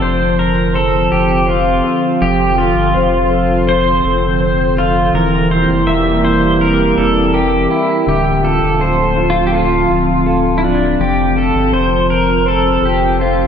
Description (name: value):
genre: dream pop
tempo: 82 BPM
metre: 4/4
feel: straight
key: F major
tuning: A4 = 440 Hz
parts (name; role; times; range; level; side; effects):
- pedal steel guitar; melody; 0.0-13.5 s; D4 to E5; -15 LUFS; equal; lush chorus, ping-pong delay
- warbly tape-like pad; sustained chords; 0.0-13.5 s; D3 to G4; -17 LUFS; equal; chorus, built-in reverb
- mellow electric guitar; arpeggios; 0.0-13.5 s; D3 to C5; -18 LUFS; left 2 dB; lush chorus, ping-pong delay
- sub bass with octave; bass; 0.0-13.5 s; D1 to G1; -20 LUFS; right 1 dB; none
room: wet lush hall reverb, RT60 2.6 s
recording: dreamy mix soaked in reverb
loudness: -11 LUFS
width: side -8 dB against mid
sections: 0.0-13.5 A section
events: none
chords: 0.0 F6; 5.1 C7/E; 8.1 Dm7; 11.0 F6